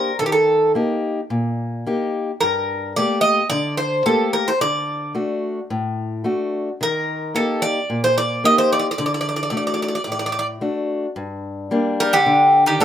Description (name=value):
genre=greek folk, Greek bouzouki band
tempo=110 BPM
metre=4/4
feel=straight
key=unclear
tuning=A4 = 441 Hz
part: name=Greek bouzouki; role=melody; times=0.0-12.8 s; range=G4 to Eb5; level=-18 LUFS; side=right 1 dB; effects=plate reverb
part: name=fingerpicked steel-string acoustic guitar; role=accompaniment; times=0.0-12.8 s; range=G2 to G4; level=-22 LUFS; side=left 2 dB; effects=plate reverb
part: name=Greek bouzouki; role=second line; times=12.0-12.8 s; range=D3 to G3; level=-21 LUFS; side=right 4 dB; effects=plate reverb
room=moderate small room ambience, RT60 0.5 s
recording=rough home demo mix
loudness=-18 LUFS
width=side -10 dB against mid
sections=0.0-11.2 A section; 11.2-12.8 B section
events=none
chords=0.2 Eb; 2.4 Gmadd9; 4.6 D; 6.8 Eb; 9.0 D; 11.2 Gm